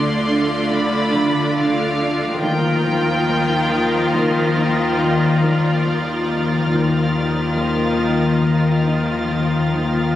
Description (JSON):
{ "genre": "cinematic, suspense film score", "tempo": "70 BPM", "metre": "5/4", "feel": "straight", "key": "unclear", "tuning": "A4 = 440 Hz", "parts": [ { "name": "warm chamber violin section", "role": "melody", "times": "0.0-10.1 s", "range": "B#4 to B#5", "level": "-27 LUFS", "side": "equal", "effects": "none" }, { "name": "warm chamber violin section", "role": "second line", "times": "0.0-10.2 s", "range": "F4 to D5", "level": "-24 LUFS", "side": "left 1 dB", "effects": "none" }, { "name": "warm chamber viola section", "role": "accompaniment", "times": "0.0-10.2 s", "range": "E#3 to E#4", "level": "-24 LUFS", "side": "right 1 dB", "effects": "none" }, { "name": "dark chamber cello section", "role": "riff", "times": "0.0-10.2 s", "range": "D3 to D#4", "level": "-27 LUFS", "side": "right 1 dB", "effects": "none" }, { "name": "dark chamber double bass section", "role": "bass", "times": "0.0-10.2 s", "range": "D2 to D#2", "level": "-25 LUFS", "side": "left 1 dB", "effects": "none" }, { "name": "warm chamber cello section", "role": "bass", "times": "0.0-10.2 s", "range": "D3 to D#3", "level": "-24 LUFS", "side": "left 1 dB", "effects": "none" }, { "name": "analog drone", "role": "drone", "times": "0.0-10.2 s", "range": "D2 to D#2", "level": "-22 LUFS", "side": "left 3 dB", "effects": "chorus" }, { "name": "warm chamber violin section", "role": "texture", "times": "0.0-10.2 s", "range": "D6 to A6", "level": "-33 LUFS", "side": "left 1 dB", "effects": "none" } ], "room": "moderate scoring stage reverb, RT60 1.8 s", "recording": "recorded on a phone in the room, club reverb", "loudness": "-16 LUFS", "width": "side -12 dB against mid", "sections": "0.0-10.2 A section", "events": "none", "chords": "0.0 Dm; 2.4 D#add9" }